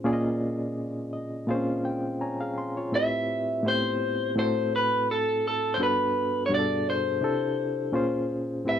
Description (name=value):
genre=soul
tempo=84 BPM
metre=4/4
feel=swing 54% on 16ths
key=unclear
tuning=A4 = 440 Hz
part: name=barky reed electric piano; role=accompaniment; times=0.0-8.8 s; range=G2 to C6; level=-27 LUFS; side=equal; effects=overdrive, fast tremolo
part: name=electric guitar through a small old amp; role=melody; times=3.0-8.8 s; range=A4 to E5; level=-26 LUFS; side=equal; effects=none
room=light reverb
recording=dry, close 1970s-style studio recording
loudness=-24 LUFS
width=side -9 dB against mid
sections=0.0-2.9 A section; 2.9-8.8 B section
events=reed electric piano fill 0.8-2.9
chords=0.0 Bbm7; 2.9 Am7; 4.4 Am69; 5.8 Gmaj7; 7.2 C6; 8.0 Bbm7